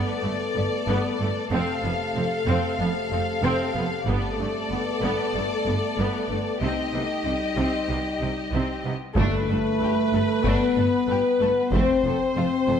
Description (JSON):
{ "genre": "cinematic, epic orchestral film score", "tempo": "94 BPM", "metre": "4/4", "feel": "straight", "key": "G mixolydian", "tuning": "A4 = 440 Hz", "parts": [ { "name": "clear symphonic violin section", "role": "melody", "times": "0.0-12.8 s", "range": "B4 to F5", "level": "-30 LUFS", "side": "left 3 dB", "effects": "none" }, { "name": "rich symphonic violin section", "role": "second line", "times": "0.0-12.8 s", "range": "C4 to A4", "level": "-32 LUFS", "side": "left 2 dB", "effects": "none" }, { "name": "rich symphonic viola section", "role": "accompaniment", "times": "0.0-12.8 s", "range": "A3 to C4", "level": "-31 LUFS", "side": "right 1 dB", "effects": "none" }, { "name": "mellow French horn section", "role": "sustained chords", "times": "0.0-12.8 s", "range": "C3 to Eb4", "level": "-26 LUFS", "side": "left 3 dB", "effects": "none" }, { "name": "clear symphonic cello section", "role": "bass", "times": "0.2-12.8 s", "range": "F2 to C3", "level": "-31 LUFS", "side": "right 3 dB", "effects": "none" }, { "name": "rich symphonic double bass section", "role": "bass", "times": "0.2-12.8 s", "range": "F1 to C2", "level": "-30 LUFS", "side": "right 3 dB", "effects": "none" }, { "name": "taiko ensemble", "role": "drums", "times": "4.1-5.3, 9.2-12.3 s", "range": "none", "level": "-28 LUFS", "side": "equal", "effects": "none" }, { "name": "timpani", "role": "percussion", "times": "9.2-10.1 s", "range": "G2", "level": "-34 LUFS", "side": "equal", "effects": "none" } ], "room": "moderate scoring stage reverb, RT60 1.7 s", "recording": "none", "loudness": "-22 LUFS", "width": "side -8 dB against mid", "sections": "0.0-9.2 A section; 9.2-12.8 B section", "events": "build-up 0.0-9.2", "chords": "0.0 Gadd9; 1.5 F; 4.1 Gadd9; 6.6 Cm; 9.2 Gadd9; 11.7 F" }